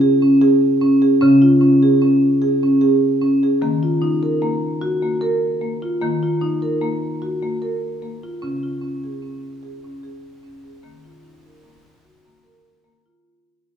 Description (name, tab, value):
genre	world meditative, meditative tuned percussion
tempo	75 BPM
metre	3/4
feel	straight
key	Eb minor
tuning	A4 = 438 Hz
part	marimba with medium mallets	solo	0.0-13.3 s	Db3 to Bb4	-16 LUFS	equal	none
room	wet recital hall reverb, RT60 1.7 s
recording	worn, warbling old tape, cassette tape, warbly pitch drift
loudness	-15 LUFS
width	side -8 dB against mid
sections	0.0-13.3 A section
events	fade-out 0.0-13.3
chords	0.0 Db5; 3.6 Eb5; 8.4 Db5; 10.8 Eb5